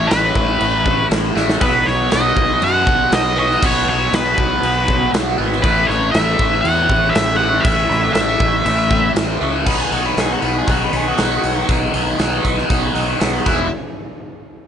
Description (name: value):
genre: classic rock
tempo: 119 BPM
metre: 4/4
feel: straight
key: unclear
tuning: A4 = 440 Hz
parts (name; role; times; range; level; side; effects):
- octave-fuzz lead guitar; melody; 0.0-9.1 s; B4 to F#5; -17 LUFS; equal; distortion, slapback echo
- biting overdriven guitar; riff; 0.0-13.7 s; E2 to D#4; -19 LUFS; equal; phaser
- fuzz fingered electric bass; bass; 0.0-13.7 s; E1 to F#2; -22 LUFS; equal; overdrive
- huge arena drum kit; drums; 0.1-13.6 s; crash cymbal, hi-hat, kick drum, snare drum; -20 LUFS; equal; none
- nasal lead guitar with a parked wah; second line; 9.7-13.7 s; E4 to B4; -24 LUFS; left 5 dB; overdrive
room: little or no reverb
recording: nothing above 10.3 kHz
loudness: -14 LUFS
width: side -8 dB against mid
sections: 0.0-9.7 A section; 9.7-13.7 B section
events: drum fill 1.4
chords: 0.0 A5; 1.6 B; 5.6 A5; 9.7 B; 13.5 E5; 13.7 N.C.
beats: 0.10 0.60 1.10 | 1.61 2.11 2.62 3.12 | 3.62 4.12 4.63 5.13 | 5.63 6.14 6.64 7.14 | 7.65 8.15 8.65 9.16 | 9.66 10.17 10.67 11.18 | 11.69 12.19 12.70 13.21